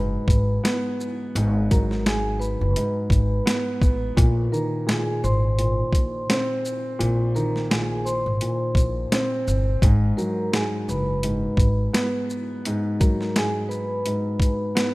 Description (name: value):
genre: hip hop, boom-bap hip-hop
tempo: 85 BPM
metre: 4/4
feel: swing 56% on 16ths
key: unclear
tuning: A4 = 440 Hz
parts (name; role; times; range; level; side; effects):
- vibraphone with soft mallets; melody; 0.0-14.9 s; Ab4 to C6; -29 LUFS; equal; high-pass filter, low-pass filter, tape echo
- dark concert grand piano; accompaniment; 0.0-14.9 s; Ab2 to C4; -25 LUFS; equal; cassette tape, high-pass filter, low-pass filter
- upright bass; bass; 0.0-11.9 s; Gb1 to Bb1; -24 LUFS; equal; none
- boom bap sampler-style drum kit; drums; 0.3-14.9 s; hi-hat, kick drum, shaker, snare drum; -22 LUFS; equal; none
room: light reverb, studio ambience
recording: rough home demo mix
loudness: -20 LUFS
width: side -21 dB against mid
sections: 0.0-14.9 A section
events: none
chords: 0.0 Abm7; 4.2 Bb9sus4; 9.8 Abm9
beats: 0.65 | 1.35 2.06 2.77 3.47 | 4.18 4.88 5.59 6.29 | 7.00 7.71 8.41 9.12 | 9.82 10.53 11.24 11.94 | 12.65 13.35 14.06 14.77